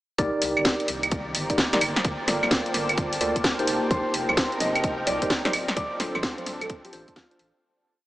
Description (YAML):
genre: UK garage, two-step garage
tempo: 129 BPM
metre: 4/4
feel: swing 65% on 16ths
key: C dorian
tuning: A4 = 440 Hz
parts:
  - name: soft string machine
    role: sustained chords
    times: 0.5-7.6 s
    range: Bb3 to A5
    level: -34 LUFS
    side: equal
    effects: phaser, ensemble chorus, sidechain pumping
  - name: mellow tine electric piano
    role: stabs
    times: 0.2-7.6 s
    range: D4 to D5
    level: -29 LUFS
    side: equal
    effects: medium stereo tremolo, analog delay
  - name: soft dub sub bass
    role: bass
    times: 0.2-7.5 s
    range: D1 to D2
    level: -39 LUFS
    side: equal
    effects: none
  - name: electronic kick drum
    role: drums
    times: 0.2-7.3 s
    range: none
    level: -29 LUFS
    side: equal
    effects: studio reverb
  - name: garage drum kit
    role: drums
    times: 0.2-7.5 s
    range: claves, hi-hat, snare drum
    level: -25 LUFS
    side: equal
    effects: studio reverb
  - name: ethereal airy pad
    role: texture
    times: 1.0-7.6 s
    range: Eb3 to Bb5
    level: -33 LUFS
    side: equal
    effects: ensemble chorus, built-in reverb, sidechain pumping
  - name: nylon-string guitar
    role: melody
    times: 3.9-7.5 s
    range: F4 to Eb5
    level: -30 LUFS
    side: equal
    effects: wide subtle chorus, tape echo
room: wet huge ambient reverb, RT60 8.0 s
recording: dreamy mix soaked in reverb, small speaker sound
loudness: -22 LUFS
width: side -16 dB against mid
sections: 0.2-7.6 drop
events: drop 0.2-7.6; fade-out 5.1-7.6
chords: 0.2 Cm7; 1.8 Gm9; 3.7 F9sus4; 5.5 Dm7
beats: | 0.18 0.65 1.11 1.58 | 2.04 2.51 2.98 3.44 | 3.91 4.37 4.84 5.30 | 5.77 6.23 6.70 7.16